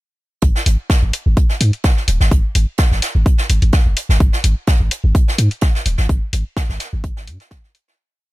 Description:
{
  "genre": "minimal techno",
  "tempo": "127 BPM",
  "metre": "4/4",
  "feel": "swing 53% on 16ths",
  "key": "unclear",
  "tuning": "A4 = 440 Hz",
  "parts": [
    { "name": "punchy sub bass", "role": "bass", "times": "0.4-7.4 s", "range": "D#1 to G#2", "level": "-15 LUFS", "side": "equal", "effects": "tube saturation, sidechain pumping" },
    { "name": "electronic kick drum", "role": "drums", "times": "0.4-7.6 s", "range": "none", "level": "-14 LUFS", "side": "equal", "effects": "none" },
    { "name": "jazz brush drum kit", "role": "drums", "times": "0.4-8.0 s", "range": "hi-hat, snare drum", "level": "-25 LUFS", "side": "right 2 dB", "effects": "sidechain pumping on hats, high-pass filter on hats, high-pass filter on snare, high-pass filter on room" },
    { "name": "electronic hi-hat", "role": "drums", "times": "0.7-7.8 s", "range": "none", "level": "-21 LUFS", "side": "left 2 dB", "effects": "none" }
  ],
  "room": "small room ambience",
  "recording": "none",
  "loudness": "-14 LUFS",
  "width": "side -19 dB against mid",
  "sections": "0.4-8.0 groove",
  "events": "fade-out 5.5-8.0",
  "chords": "none"
}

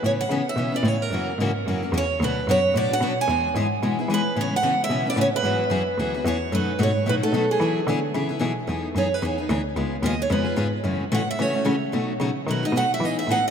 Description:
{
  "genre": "acoustic string swing (jazz manouche)",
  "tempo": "222 BPM",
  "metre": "4/4",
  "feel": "swing 58% on 8ths",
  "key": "A major, E major from 8.7 s",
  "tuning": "A4 = 440 Hz",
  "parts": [
    { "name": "picked steel-string acoustic guitar", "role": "melody", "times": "0.0-13.5 s", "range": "G#4 to G#5", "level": "-24 LUFS", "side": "right 2 dB", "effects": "tape echo" },
    { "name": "picked steel-string acoustic guitar", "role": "accompaniment", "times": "0.0-13.4 s", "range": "B2 to G#4", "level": "-26 LUFS", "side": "left 3 dB", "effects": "none" },
    { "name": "clear cello", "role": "bass", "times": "0.0-13.5 s", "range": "C#2 to E3", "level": "-26 LUFS", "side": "equal", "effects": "none" }
  ],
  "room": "wet cathedral reverb, RT60 6.1 s",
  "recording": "in a vast, echoing space",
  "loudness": "-21 LUFS",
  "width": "side -7 dB against mid",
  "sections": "0.0-8.7 A section; 8.7-13.5 B section",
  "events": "steel-string acoustic guitar solo 8.7-13.5",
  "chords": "0.0 Aadd9; 1.1 F#7; 2.2 Bm; 3.3 E; 4.4 Aadd9; 5.4 Eadd9; 6.5 B7/F#; 7.6 Eadd9; 8.7 Emaj7; 9.8 C#7; 10.9 F#m7; 11.9 B7"
}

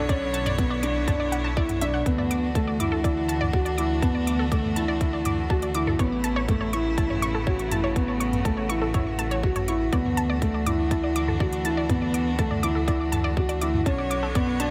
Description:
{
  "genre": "piano and strings electronica",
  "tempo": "122 BPM",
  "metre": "4/4",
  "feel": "straight",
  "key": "D major",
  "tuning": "A4 = 440 Hz",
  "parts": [
    { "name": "clear string quartet", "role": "sustained chords", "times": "0.0-14.7 s", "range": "C#3 to C#5", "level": "-34 LUFS", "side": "equal", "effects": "sidechain pumping" },
    { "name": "unison pluck", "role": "arpeggios", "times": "0.0-14.7 s", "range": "A4 to D6", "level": "-34 LUFS", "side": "equal", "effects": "vintage 12-bit sampler grit, sidechain pumping, delay" },
    { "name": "dark upright piano", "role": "riff", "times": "0.0-14.7 s", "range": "A3 to F#4", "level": "-29 LUFS", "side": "equal", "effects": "delay" },
    { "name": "dark detuned saw bass", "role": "bass", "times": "0.0-14.7 s", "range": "A1 to D2", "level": "-32 LUFS", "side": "equal", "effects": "sidechain pumping" },
    { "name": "electronic kick drum", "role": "drums", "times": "0.1-14.5 s", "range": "none", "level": "-27 LUFS", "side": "equal", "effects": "none" },
    { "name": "organic electronic drum kit", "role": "drums", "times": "0.1-14.7 s", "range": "hi-hat, toms", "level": "-35 LUFS", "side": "equal", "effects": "none" }
  ],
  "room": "light reverb",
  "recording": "none",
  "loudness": "-25 LUFS",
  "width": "mono",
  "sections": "0.0-14.7 A section",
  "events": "none",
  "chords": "0.0 Bmadd9; 2.1 Dadd9; 6.0 Aadd9; 9.9 Dadd9; 13.9 Bmadd9"
}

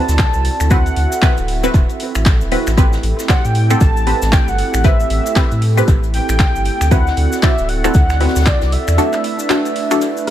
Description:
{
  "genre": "deep house",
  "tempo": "116 BPM",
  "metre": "4/4",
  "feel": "swing 60% on 16ths",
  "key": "A dorian",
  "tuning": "A4 = 440 Hz",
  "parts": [
    { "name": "warm velvety synth lead", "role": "melody", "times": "0.0-10.3 s", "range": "D5 to A5", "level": "-21 LUFS", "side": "equal", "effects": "chorus, analog delay" },
    { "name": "hollow soft pad", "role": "sustained chords", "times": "0.0-10.3 s", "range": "A3 to E5", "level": "-24 LUFS", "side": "right 4 dB", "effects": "chorus, sidechain pumping" },
    { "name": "filtered dub chord stab", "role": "stabs", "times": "0.0-10.3 s", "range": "C4 to D5", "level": "-20 LUFS", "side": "left 1 dB", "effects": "phaser, sidechain pumping, analog delay" },
    { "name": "warm sub bass", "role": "bass", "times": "0.1-9.0 s", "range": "D1 to A2", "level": "-17 LUFS", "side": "equal", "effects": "tube saturation, sidechain pumping" },
    { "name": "deep house drum kit", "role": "drums", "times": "0.1-10.3 s", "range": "finger snaps, handclaps, hi-hat, rim click", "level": "-24 LUFS", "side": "equal", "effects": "dub echo" },
    { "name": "unplugged drum kit", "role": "drums", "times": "0.1-10.3 s", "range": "hi-hat, snare drum", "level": "-34 LUFS", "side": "left 1 dB", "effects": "none" },
    { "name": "cabasa", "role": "percussion", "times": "0.1-10.3 s", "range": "none", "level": "-31 LUFS", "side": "left 4 dB", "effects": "none" },
    { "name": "electronic kick drum", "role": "drums", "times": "0.2-8.6 s", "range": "none", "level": "-13 LUFS", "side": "equal", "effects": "none" }
  ],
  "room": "small room ambience",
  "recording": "echo-heavy mix",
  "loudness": "-12 LUFS",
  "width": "side -12 dB against mid",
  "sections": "0.0-10.3 A section",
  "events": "break 9.0-10.3",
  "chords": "0.0 D13; 2.8 Am9; 6.9 D13; 9.0 E7sus4"
}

